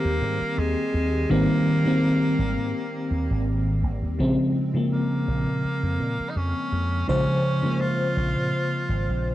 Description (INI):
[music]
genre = vaporwave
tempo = 83 BPM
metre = 4/4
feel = swing 53% on 16ths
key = Bb dorian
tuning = A4 = 441 Hz
[part]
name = edgy tenor saxophone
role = melody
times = 0.0-9.3 s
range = Ab3 to F4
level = -30 LUFS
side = equal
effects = vintage 12-bit sampler grit, analog delay
[part]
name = FM electric piano with soft pad layer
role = accompaniment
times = 0.0-9.3 s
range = Db3 to C5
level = -23 LUFS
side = equal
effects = tremolo, analog chorus
[part]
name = slap bass with an envelope filter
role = bass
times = 0.0-9.3 s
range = Ab1 to Bb2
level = -26 LUFS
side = equal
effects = none
[sound]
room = light reverb, small room ambience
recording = dry, gritty hardware recording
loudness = -21 LUFS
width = side -14 dB against mid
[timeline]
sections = 0.0-4.2 A section; 4.2-9.3 B section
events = none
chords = 0.0 Abmaj9; 4.2 Bbm9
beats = 0.58 | 1.30 2.02 2.75 3.47 | 4.19 4.92 5.64 6.36 | 7.08 7.81 8.53 9.25